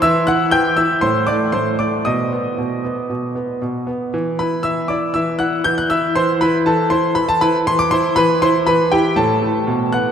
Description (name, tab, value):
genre	classical-period piano sonatina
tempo	118 BPM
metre	4/4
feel	straight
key	E minor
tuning	A4 = 440 Hz
part	clear grand piano	solo	0.0-10.1 s	A2 to G6	-15 LUFS	equal	none
room	wet cathedral reverb, RT60 5.6 s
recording	in a vast, echoing space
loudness	-15 LUFS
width	side -8 dB against mid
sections	0.0-10.1 A section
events	none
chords	0.0 Em; 1.0 Am; 2.1 B; 4.1 E5; 6.2 Am/E; 8.2 Em; 9.2 N.C.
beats	| 0.01 0.52 1.02 1.53 | 2.06 2.58 3.10 3.62 | 4.14 4.65 5.15 5.66 | 6.17 6.67 7.17 7.67 | 8.18 8.68 9.17 9.68